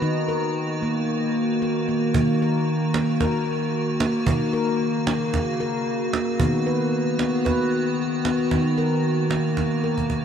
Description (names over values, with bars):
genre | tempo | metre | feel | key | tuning
world meditative, meditative tuned percussion | 113 BPM | 4/4 | swing 54% on 16ths | Eb minor | A4 = 440 Hz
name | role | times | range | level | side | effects
icy glass pad | sustained chords | 0.0-10.2 s | Db3 to Gb4 | -25 LUFS | equal | chorus, built-in reverb
handpan | arpeggios | 0.0-10.2 s | Eb3 to B4 | -23 LUFS | left 1 dB | none
cajon | percussion | 2.1-10.2 s | none | -29 LUFS | right 4 dB | none
room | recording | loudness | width
wet huge ambient reverb, RT60 8.4 s | dreamy mix soaked in reverb | -20 LUFS | side -8 dB against mid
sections
0.0-2.1 A section; 2.1-10.2 B section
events
drum fill 10.0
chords
0.0 Ebm; 4.3 Gb; 6.4 B/D#; 8.5 Ebm